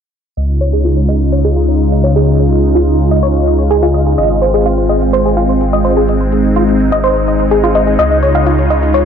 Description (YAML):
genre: progressive house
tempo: 126 BPM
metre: 4/4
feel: straight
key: unclear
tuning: A4 = 440 Hz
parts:
  - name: supersaw pad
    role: sustained chords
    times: 0.4-9.1 s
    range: Db3 to F4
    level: -14 LUFS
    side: equal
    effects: phaser
  - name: tight sequenced synth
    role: arpeggios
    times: 0.4-9.0 s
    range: F4 to F5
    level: -15 LUFS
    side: equal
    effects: chorus, tape echo
  - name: saturated sub bass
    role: bass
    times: 0.4-9.1 s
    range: Ab1 to Db2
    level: -14 LUFS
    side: equal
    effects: tube saturation
  - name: electronic hi-hat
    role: drums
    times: 0.4-9.0 s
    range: none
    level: -47 LUFS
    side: right 4 dB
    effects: none
  - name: egg shaker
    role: percussion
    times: 8.0-9.0 s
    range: none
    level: -57 LUFS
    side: equal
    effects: none
room: wet plate reverb, RT60 1.2 s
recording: dreamy mix soaked in reverb, low-pass filter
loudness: -10 LUFS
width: side -7 dB against mid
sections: 0.4-9.1 A section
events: filter sweep on synth arpeggio sound 0.4-9.1; filter sweep 0.4-9.1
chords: 0.4 Dbadd9; 4.2 Ab6; 8.0 Dbadd9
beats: | 0.37 0.85 1.32 1.80 | 2.27 2.75 3.23 3.70 | 4.18 4.66 5.13 5.61 | 6.08 6.56 7.04 7.51 | 7.99 8.46 8.94